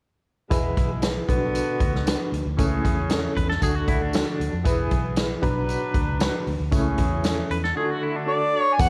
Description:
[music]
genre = uptempo 1960s-style soul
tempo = 116 BPM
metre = 4/4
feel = straight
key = E mixolydian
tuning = A4 = 443 Hz
[part]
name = warm horn section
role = second line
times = 0.5-8.5 s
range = B2 to B4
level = -33 LUFS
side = equal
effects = none
[part]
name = reed electric piano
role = accompaniment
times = 0.5-8.9 s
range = B2 to B4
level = -30 LUFS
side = equal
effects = fast tremolo
[part]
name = vintage muted fingered electric bass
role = bass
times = 0.5-8.9 s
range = E1 to F2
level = -30 LUFS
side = equal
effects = none
[part]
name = swinging big-band drum kit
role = drums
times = 0.5-8.9 s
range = hi-hat, kick drum, snare drum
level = -27 LUFS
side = equal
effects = none
[part]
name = tambourine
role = percussion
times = 0.5-8.9 s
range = none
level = -44 LUFS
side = equal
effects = none
[part]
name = clean electric guitar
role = riff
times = 3.4-8.8 s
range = D4 to B4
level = -32 LUFS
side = equal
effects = tremolo
[part]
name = mellow harmonica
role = melody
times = 8.3-8.9 s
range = D5 to G#5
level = -22 LUFS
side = equal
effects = none
[sound]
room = light reverb, small room ambience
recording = none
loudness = -24 LUFS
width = mono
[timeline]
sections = 0.5-8.8 A section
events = none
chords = 0.5 E; 1.3 Bm; 2.6 A/C#; 3.6 D; 4.7 E; 5.4 Bm; 6.7 A/C#; 7.8 D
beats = | 0.51 1.03 1.55 2.06 | 2.58 3.10 3.62 4.14 | 4.66 5.17 5.69 6.21 | 6.73 7.25 7.76 8.28 | 8.80

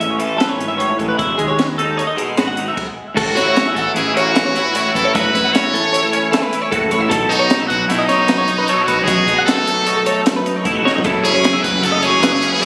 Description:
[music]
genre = math rock and midwest emo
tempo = 152 BPM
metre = 5/4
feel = straight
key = unclear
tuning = A4 = 440 Hz
[part]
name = twangy electric guitar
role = accompaniment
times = 0.0-12.7 s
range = F#2 to B4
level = -23 LUFS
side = equal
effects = ensemble chorus
[part]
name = twelve-string electric guitar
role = arpeggios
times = 0.0-12.7 s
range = E4 to F#5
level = -22 LUFS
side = equal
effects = analog delay
[part]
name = fuzz fingered electric bass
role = bass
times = 0.0-12.4 s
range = E1 to F#2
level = -26 LUFS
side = equal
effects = overdrive
[part]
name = compact cocktail drum kit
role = drums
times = 0.0-12.7 s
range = crash cymbal, hi-hat, kick drum, snare drum, toms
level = -22 LUFS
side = equal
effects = none
[part]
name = brilliant trumpet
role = melody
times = 3.3-12.7 s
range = D#4 to C#5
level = -19 LUFS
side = equal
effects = none
[part]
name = overdriven semi-hollow guitar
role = riff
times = 11.0-12.7 s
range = F#2 to C#4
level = -27 LUFS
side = equal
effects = none
[sound]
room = moderate studio reverb, RT60 0.7 s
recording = recorded on a phone in the room, studio reverb, compression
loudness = -16 LUFS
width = mono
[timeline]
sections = 0.0-3.2 A section; 3.2-12.7 B section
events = stop 2.8-3.2; drum fill 10.9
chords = 0.0 Amaj7; 1.2 Emaj7; 3.2 A69; 7.1 B9; 11.1 F#m9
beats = 0.00 0.40 0.79 | 1.19 1.58 1.98 2.38 2.77 | 3.17 3.56 3.96 4.36 4.75 | 5.15 5.54 5.93 6.33 6.72 | 7.12 7.51 7.91 8.30 8.69 | 9.09 9.48 9.87 10.27 10.66 | 11.05 11.44 11.84 12.23 12.62

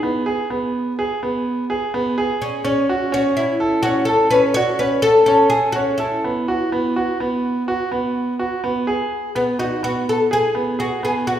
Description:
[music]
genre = contemporary instrumental, contemporary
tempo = 126 BPM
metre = 7/4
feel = straight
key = unclear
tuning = A4 = 440 Hz
[part]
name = oud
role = melody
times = 0.0-11.4 s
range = B3 to C#5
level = -18 LUFS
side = left 1 dB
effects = none
[part]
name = bright concert grand piano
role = arpeggios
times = 0.0-11.4 s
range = B3 to A4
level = -20 LUFS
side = right 2 dB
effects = none
[sound]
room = wet recital hall reverb, RT60 1.4 s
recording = recorded in a church or concert hall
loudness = -17 LUFS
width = side -10 dB against mid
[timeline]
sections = 0.0-9.4 A section; 9.4-11.4 B section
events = none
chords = 0.0 B5; 2.7 A6; 6.0 Bsus4; 9.4 G#m7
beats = 0.27 0.75 1.23 1.70 2.18 | 2.66 3.14 3.62 4.09 4.57 5.05 5.53 | 6.01 6.48 6.96 7.44 7.92 8.40 8.88 | 9.36 9.84 10.31 10.79 11.27

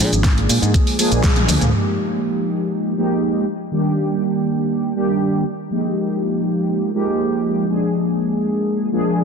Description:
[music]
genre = nu-disco, nu disco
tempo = 121 BPM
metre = 4/4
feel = straight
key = F dorian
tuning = A4 = 440 Hz
[part]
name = mellow synth brass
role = accompaniment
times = 0.0-9.2 s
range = Eb3 to Ab4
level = -18 LUFS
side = equal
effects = chorus, sidechain pumping, ping-pong delay
[part]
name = fingered electric bass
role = bass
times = 0.0-1.7 s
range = Ab1 to Bb2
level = -18 LUFS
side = equal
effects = none
[part]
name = pop drum kit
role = drums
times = 0.0-1.7 s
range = hi-hat, shaker, snare drum, toms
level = -20 LUFS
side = equal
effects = studio reverb
[part]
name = electronic kick drum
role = drums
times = 0.2-1.3 s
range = none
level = -17 LUFS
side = equal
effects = studio reverb
[sound]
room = moderate echo chamber reverb, RT60 2.3 s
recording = dense, heavily limited modern master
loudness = -16 LUFS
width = side -6 dB against mid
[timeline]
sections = 0.0-1.7 A section; 1.7-9.2 B section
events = drum fill 1.2-1.7; band accent 1.2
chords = 0.0 Bb7; 1.7 Fm11; 3.5 Ebmaj7; 5.5 Fm11; 7.7 Bb7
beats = 0.25 0.74 1.24 | 1.74 2.23 2.73 3.22 | 3.72 4.21 4.71 5.21 | 5.70 6.20 6.69 7.19 | 7.68 8.18 8.68 9.17

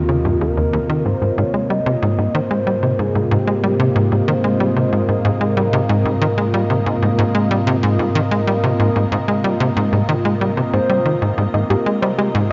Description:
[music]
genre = ambient, sequencer-driven space music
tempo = 93 BPM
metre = 4/4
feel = straight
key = Ab major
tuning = A4 = 440 Hz
[part]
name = pulse-width lead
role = melody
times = 0.0-5.6, 10.7-11.3 s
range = G4 to Eb5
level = -26 LUFS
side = equal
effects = chorus, analog delay
[part]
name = evolving wavetable pad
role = sustained chords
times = 0.0-12.5 s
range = C3 to Eb5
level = -23 LUFS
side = equal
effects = chorus, built-in reverb
[part]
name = tight sequencer bass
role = riff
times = 0.0-12.5 s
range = Eb2 to Ab3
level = -20 LUFS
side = equal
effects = analog delay
[part]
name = analog drone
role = bass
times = 0.0-12.5 s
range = Eb2 to Ab2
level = -26 LUFS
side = equal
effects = chorus
[part]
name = soft round pluck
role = arpeggios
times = 11.5-12.3 s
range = G4 to Eb5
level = -25 LUFS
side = equal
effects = chorus, analog delay
[sound]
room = wet huge ambient reverb, RT60 7.8 s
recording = cassette tape, nothing above 7.6 kHz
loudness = -17 LUFS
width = mono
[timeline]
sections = 0.0-1.1 A section; 1.1-12.5 B section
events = none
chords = 0.0 Eb7; 1.1 Abmaj7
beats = 0.41 | 1.05 1.70 2.35 2.99 | 3.63 4.28 4.93 5.57 | 6.22 6.86 7.51 8.15 | 8.80 9.44 10.09 10.73 | 11.38 12.02

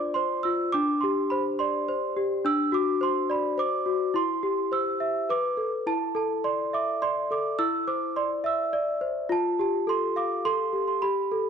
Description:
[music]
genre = children's music, lullaby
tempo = 105 BPM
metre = 3/4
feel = straight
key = C major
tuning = A4 = 440 Hz
[part]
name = celesta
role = solo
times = 0.0-11.5 s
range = D4 to E6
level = -24 LUFS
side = equal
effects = none
[sound]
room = light reverb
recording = dark, warm production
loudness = -24 LUFS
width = side -7 dB against mid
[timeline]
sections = 0.0-11.5 A section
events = none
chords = 0.0 Dm7; 0.7 Gsus4; 2.4 D7; 4.2 C; 5.3 Asus24; 5.9 Dsus2; 7.6 Cadd9/E; 9.3 Fadd9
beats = 0.16 | 0.73 1.30 1.87 | 2.44 3.01 3.58 | 4.15 4.72 5.30 | 5.88 6.46 7.03 | 7.60 8.17 8.74 | 9.31 9.88 10.45 | 11.03

